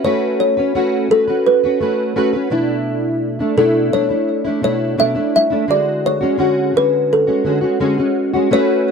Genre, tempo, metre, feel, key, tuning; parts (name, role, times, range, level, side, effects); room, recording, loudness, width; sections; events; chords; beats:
indie pop; 85 BPM; 4/4; straight; A4 = 440 Hz
kalimba; melody; 0.0-8.9 s; A4 to E5; -17 LUFS; left 1 dB; wide subtle chorus, tape echo
fingerpicked plugged-in steel-string acoustic guitar; accompaniment; 0.0-8.9 s; B2 to B4; -17 LUFS; equal; analog chorus, warbly pitch drift
light reverb; dry, close 1970s-style studio recording; -14 LUFS; side -6 dB against mid
0.0-8.5 A section
0.0 A69; 2.5 Bm11; 5.7 Dmaj7#11
| 0.05 0.75 1.46 2.16 | 2.87 3.58 4.28 4.99 | 5.70 6.40 7.11 7.82 | 8.52